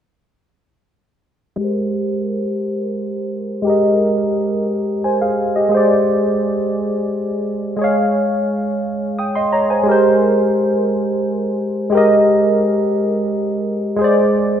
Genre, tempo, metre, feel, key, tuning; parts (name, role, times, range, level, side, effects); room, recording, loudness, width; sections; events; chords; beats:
R&B; 58 BPM (dotted quarters); 6/8; straight; Ab major; A4 = 440 Hz
barky tine electric piano; accompaniment; 1.6-14.6 s; Ab3 to Eb6; -15 LUFS; equal; overdrive, analog chorus, low-pass filter
wet plate reverb, RT60 2.6 s; rough home demo mix; -15 LUFS; side -9 dB against mid
1.6-9.9 A section; 9.9-14.6 B section
filter sweep on tine electric piano 1.6-9.9
1.6 Abmaj9; 5.7 Ab(#11); 7.8 Bbm11/Ab; 9.9 Abmaj9; 14.0 Ab
| 1.58 2.61 | 3.65 4.68 | 5.71 6.75 | 7.78 8.82 | 9.85 10.89 | 11.92 12.96 | 13.99